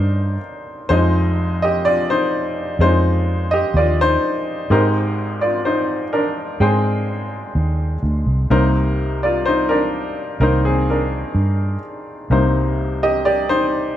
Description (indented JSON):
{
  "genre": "folk",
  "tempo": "63 BPM",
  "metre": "4/4",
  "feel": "straight",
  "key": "C minor",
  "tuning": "A4 = 440 Hz",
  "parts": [
    { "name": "bright baby grand piano", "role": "melody", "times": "0.0-14.0 s", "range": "F1 to G5", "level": "-18 LUFS", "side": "left 1 dB", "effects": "none" },
    { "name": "vintage muted fingered electric bass", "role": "bass", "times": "0.0-14.0 s", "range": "C2 to Ab2", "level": "-19 LUFS", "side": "equal", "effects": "none" }
  ],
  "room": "light reverb",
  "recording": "none",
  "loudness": "-16 LUFS",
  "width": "side -11 dB against mid",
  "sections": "0.0-14.0 A section",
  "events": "none",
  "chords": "0.0 Cm7; 0.9 Fm7; 4.7 Abmaj7; 8.5 Cm7",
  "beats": "| 0.90 1.85 2.80 3.75 | 4.70 5.65 6.60 7.55 | 8.50 9.45 10.40 11.35 | 12.30 13.25"
}